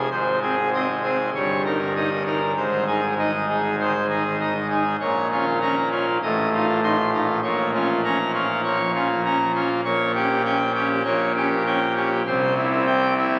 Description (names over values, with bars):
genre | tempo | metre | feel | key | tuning
classical, organ toccata | 99 BPM | 4/4 | straight | Ab major | A4 = 439 Hz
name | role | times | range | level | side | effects
pipe organ, full organ | solo | 0.0-13.4 s | G1 to C6 | -22 LUFS | equal | none
room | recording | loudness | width
wet cathedral reverb, RT60 6.9 s | very old 78 rpm record, vinyl crackle | -22 LUFS | mono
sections
0.1-13.4 A section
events
none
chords
0.1 Ab; 1.3 Eb7/G; 2.6 Ab; 5.0 Bbm; 6.2 F7/A; 7.4 Bbm; 9.9 Gdim/Bb; 12.3 C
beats
| 0.11 0.72 1.34 1.95 | 2.56 3.17 3.78 4.39 | 5.00 5.61 6.22 6.82 | 7.43 8.04 8.64 9.25 | 9.85 10.45 11.05 11.66 | 12.27 12.87